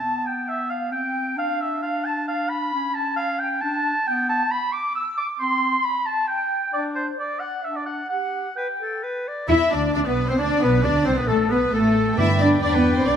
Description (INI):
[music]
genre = quick classical-period movement for symphony orchestra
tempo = 134 BPM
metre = 3/4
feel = straight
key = G major from 4.1 s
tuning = A4 = 440 Hz
[part]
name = bright clarinet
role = second line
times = 0.0-13.2 s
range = B3 to E5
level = -28 LUFS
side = left 1 dB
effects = none
[part]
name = large flute ensemble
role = second line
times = 0.0-13.2 s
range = C4 to E6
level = -28 LUFS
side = left 2 dB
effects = none
[part]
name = warm oboe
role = second line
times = 0.0-13.2 s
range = B3 to E6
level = -25 LUFS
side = right 2 dB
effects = none
[part]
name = dark chamber violin section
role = melody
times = 9.5-13.2 s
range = A3 to G5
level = -30 LUFS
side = left 4 dB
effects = none
[part]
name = clear studio violin section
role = second line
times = 9.5-13.1 s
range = A4 to E5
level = -30 LUFS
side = left 2 dB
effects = none
[part]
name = warm studio viola section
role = accompaniment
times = 9.5-13.2 s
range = A3 to D5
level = -29 LUFS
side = equal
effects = none
[part]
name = mellow French horn section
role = sustained chords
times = 9.5-13.2 s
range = A3 to E4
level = -25 LUFS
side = left 4 dB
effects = none
[part]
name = dark studio double bass section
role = bass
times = 9.5-13.2 s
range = A1 to G2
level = -25 LUFS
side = right 3 dB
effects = none
[part]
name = warm studio cello section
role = bass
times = 9.5-13.2 s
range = A3 to E4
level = -22 LUFS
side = right 2 dB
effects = none
[part]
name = timpani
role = percussion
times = 12.2-12.8 s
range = G2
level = -25 LUFS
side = equal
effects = none
[sound]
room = moderate scoring stage reverb, RT60 1.6 s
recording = none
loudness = -20 LUFS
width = side -8 dB against mid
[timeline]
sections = 0.0-9.5 A section; 9.5-13.2 B section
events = none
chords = 0.0 N.C.; 8.1 G; 9.5 Cmaj9; 10.8 D5; 12.2 G